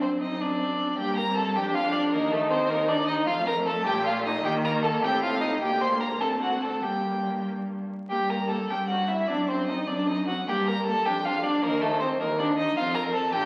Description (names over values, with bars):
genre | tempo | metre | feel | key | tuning
quick classical-period movement for string quartet | 103 BPM (dotted quarters) | 6/8 | rubato | G minor | A4 = 440 Hz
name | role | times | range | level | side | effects
rich violin | melody | 0.0-13.5 s | A4 to C6 | -31 LUFS | equal | none
warm violin | second line | 0.0-13.5 s | A3 to C5 | -30 LUFS | equal | none
warm viola | accompaniment | 0.0-13.5 s | A3 to Eb4 | -34 LUFS | equal | none
warm cello | bass | 0.0-13.5 s | D2 to Eb3 | -34 LUFS | equal | none
room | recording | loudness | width
wet recital hall reverb, RT60 1.4 s | very old 78 rpm record, vinyl crackle | -26 LUFS | mono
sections
0.0-8.1 A section; 8.1-13.5 A section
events
none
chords
0.0 D7/F#; 1.0 Gm; 1.6 Dm/F; 2.1 Cm13/Eb; 3.3 F; 3.9 Gm9/Bb; 4.4 Eb5; 5.0 F9/A; 5.6 Gmadd11/D; 6.2 D7; 6.8 Gm; 8.7 Em69/G; 9.3 D7b9/F#; 10.5 Gm; 11.1 Dm/F; 11.6 Cm13/Eb; 12.8 F5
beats
0.41 | 0.99 1.56 | 2.14 2.71 | 3.28 3.86 | 4.45 5.03 | 5.61 6.22 | 6.84 7.47 | 8.10 8.70 | 9.29 9.88 | 10.47 11.05 | 11.63 12.20 | 12.77 13.33